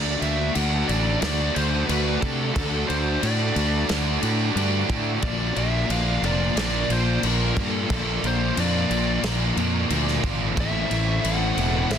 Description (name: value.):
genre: rock, shoegaze and dream pop.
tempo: 90 BPM.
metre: 4/4.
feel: straight.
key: unclear.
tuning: A4 = 442 Hz.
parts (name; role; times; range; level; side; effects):
dark smooth lead guitar; melody; 0.0-12.0 s; A4 to F#5; -29 LUFS; left 2 dB; overdrive, analog delay.
soft additive organ-like pad; sustained chords; 0.0-12.0 s; Bb3 to C6; -35 LUFS; equal; ensemble chorus, built-in reverb.
biting overdriven guitar; riff; 0.0-12.0 s; A2 to F#4; -27 LUFS; right 13 dB; reverse reverb.
thick fuzz guitar; riff; 0.0-12.0 s; A2 to D4; -29 LUFS; left 10 dB; distortion, ensemble chorus.
fuzz fingered electric bass; bass; 0.0-12.0 s; E1 to C3; -25 LUFS; right 1 dB; overdrive.
loose indie drum kit; drums; 0.2-12.0 s; crash cymbal, kick drum, snare drum; -29 LUFS; left 2 dB; none.
room: small room ambience.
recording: dense, heavily limited modern master.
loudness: -20 LUFS.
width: side -8 dB against mid.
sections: 0.0-12.0 A section.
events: none.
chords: 0.0 D; 5.2 Bbadd9; 10.6 Amadd9.